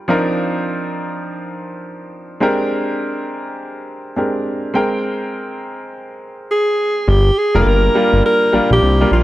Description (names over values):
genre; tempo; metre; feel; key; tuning
R&B, new jack swing; 103 BPM; 4/4; swing 61% on 16ths; unclear; A4 = 440 Hz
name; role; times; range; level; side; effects
clear grand piano; accompaniment; 0.0-9.2 s; F3 to G5; -19 LUFS; equal; none
dark alto saxophone; melody; 6.5-9.2 s; F4 to Bb4; -15 LUFS; equal; none
fat analog bass; bass; 7.1-9.2 s; F1 to C2; -14 LUFS; equal; none
room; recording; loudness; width
light reverb, studio reverb; none; -14 LUFS; side -15 dB against mid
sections
0.0-7.1 A section; 7.1-9.2 B section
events
none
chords
0.1 Cm11; 2.4 Bb13; 4.7 Abmaj9; 7.1 Gm7